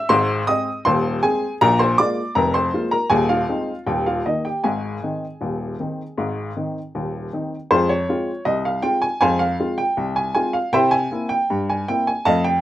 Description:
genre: ragtime piano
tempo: 79 BPM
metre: 2/4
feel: straight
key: Ab major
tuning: A4 = 442 Hz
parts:
  - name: warm upright piano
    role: solo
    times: 0.0-12.6 s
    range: Eb1 to Eb6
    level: -18 LUFS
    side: equal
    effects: none
room: light reverb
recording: rough home demo mix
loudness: -18 LUFS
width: side -13 dB against mid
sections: 0.0-7.7 A section; 7.7-12.6 B section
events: none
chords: 0.1 Ab; 1.6 Bb7; 3.1 Ab/Eb; 3.9 Eb; 4.6 Ab; 7.7 Fm; 10.7 C7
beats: | 0.09 0.84 | 1.60 2.35 | 3.11 3.87 | 4.63 5.40 | 6.17 6.93 | 7.70 8.46 | 9.22 9.98 | 10.73 11.49 | 12.25

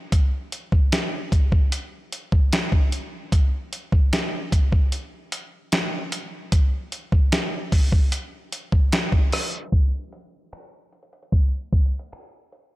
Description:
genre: R&B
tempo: 75 BPM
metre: 4/4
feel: straight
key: none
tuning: none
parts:
  - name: dusty soul sampler-style drum kit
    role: drums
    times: 0.1-12.7 s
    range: finger snaps, hi-hat, kick drum, rim click, snare drum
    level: -19 LUFS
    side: equal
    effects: none
room: little or no reverb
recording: low-pass filter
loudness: -20 LUFS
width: side -18 dB against mid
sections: 0.0-9.7 A section; 9.7-12.8 B section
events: filter sweep 9.7-12.8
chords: none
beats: | 0.12 0.92 1.72 2.52 | 3.32 4.12 4.92 5.72 | 6.52 7.32 8.12 8.92 | 9.72 10.52 11.32 12.12

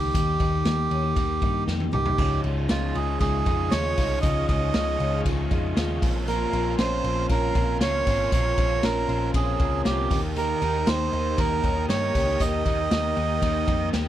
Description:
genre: jangly indie pop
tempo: 118 BPM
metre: 4/4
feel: straight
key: unclear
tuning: A4 = 440 Hz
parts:
  - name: melodica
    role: melody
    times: 0.0-13.9 s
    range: F4 to Eb5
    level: -26 LUFS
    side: right 4 dB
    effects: slapback echo
  - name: twelve-string electric guitar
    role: arpeggios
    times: 0.0-14.1 s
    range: Bb2 to G4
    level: -30 LUFS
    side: left 5 dB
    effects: slapback echo
  - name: vintage muted picked electric bass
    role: bass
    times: 0.0-14.1 s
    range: Ab1 to G2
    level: -28 LUFS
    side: equal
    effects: none
  - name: raw garage drum kit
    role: drums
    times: 0.1-14.1 s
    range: hi-hat, kick drum, ride cymbal, snare drum, splash cymbal, toms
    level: -27 LUFS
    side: equal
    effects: none
  - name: raw garage guitar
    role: accompaniment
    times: 2.2-14.1 s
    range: Bb2 to G4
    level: -32 LUFS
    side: right 2 dB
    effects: overdrive, spring reverb
  - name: lush unison pad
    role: sustained chords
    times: 2.2-14.1 s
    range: Ab4 to Eb6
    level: -37 LUFS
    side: equal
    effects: chorus
room: little or no reverb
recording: none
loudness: -21 LUFS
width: side -12 dB against mid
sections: 0.0-14.1 A section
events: drum fill 1.7-2.2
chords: 0.0 Eb; 2.2 Dbadd9; 6.0 Bbmadd9; 10.1 Eb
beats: | 0.14 0.66 1.17 1.68 | 2.19 2.70 3.21 3.72 | 4.23 4.74 5.25 5.76 | 6.28 6.79 7.30 7.81 | 8.32 8.83 9.34 9.85 | 10.36 10.87 11.38 11.89 | 12.40 12.91 13.42 13.93

